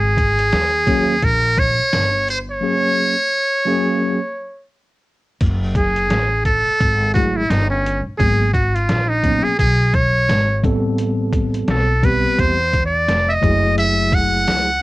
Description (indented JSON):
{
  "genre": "hip hop, jazz-hop",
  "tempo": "86 BPM",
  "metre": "4/4",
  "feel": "swing 61% on 16ths",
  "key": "F# dorian",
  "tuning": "A4 = 437 Hz",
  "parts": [
    { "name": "trumpet with metal mute", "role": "melody", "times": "0.0-14.8 s", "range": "C#4 to F#5", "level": "-17 LUFS", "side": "right 1 dB", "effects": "cassette tape" },
    { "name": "upright bass", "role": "bass", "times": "0.0-14.8 s", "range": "E#1 to E2", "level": "-20 LUFS", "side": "equal", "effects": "none" },
    { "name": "trip hop sampler-style drum kit", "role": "drums", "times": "0.2-14.7 s", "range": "crash cymbal, hi-hat, kick drum, snare drum", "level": "-21 LUFS", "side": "equal", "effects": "cassette tape" },
    { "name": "mellow tine electric piano", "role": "accompaniment", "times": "0.9-14.7 s", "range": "F#3 to A4", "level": "-20 LUFS", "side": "equal", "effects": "medium stereo tremolo, cassette tape" }
  ],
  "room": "light reverb",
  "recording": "home recording on cassette",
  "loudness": "-15 LUFS",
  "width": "side -19 dB against mid",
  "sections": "0.0-5.4 A section; 5.4-14.8 B section",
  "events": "break 2.6-5.4; muted trumpet solo 5.4-14.8",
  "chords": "0.0 G#9sus4; 5.4 F#madd9; 8.2 G#m9; 10.6 Am9; 13.4 F#m9"
}